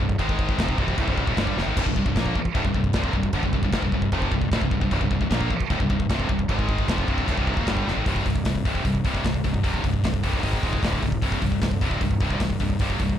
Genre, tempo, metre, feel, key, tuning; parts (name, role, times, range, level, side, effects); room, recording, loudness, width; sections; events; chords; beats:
heavy metal; 152 BPM; 4/4; straight; C minor; A4 = 440 Hz
heavy high-gain guitar; riff; 0.0-13.2 s; C2 to Bb3; -27 LUFS; left 10 dB; distortion
scooped high-gain guitar; riff; 0.0-13.2 s; C2 to Bb3; -27 LUFS; right 8 dB; distortion
fuzz fingered electric bass; bass; 0.0-13.2 s; C1 to Bb1; -28 LUFS; equal; overdrive
modern studio drum kit; drums; 0.0-13.2 s; china cymbal, crash cymbal, hi-hat, kick drum, snare drum, splash cymbal; -26 LUFS; equal
little or no reverb; dark, warm production; -21 LUFS; side -10 dB against mid
0.0-8.1 A section; 8.1-13.2 B section
drum fill 1.6, 7.9
0.2 Ab5; 0.6 C5; 6.5 Ab5; 6.9 Cm; 8.1 C5; 10.4 Ab5; 10.8 D5; 11.2 C5
| 0.19 0.58 0.98 1.37 | 1.77 2.16 2.55 2.95 | 3.34 3.73 4.13 4.52 | 4.91 5.31 5.70 6.10 | 6.49 6.88 7.28 7.67 | 8.07 8.46 8.86 9.25 | 9.64 10.04 10.43 10.83 | 11.22 11.62 12.01 12.41 | 12.80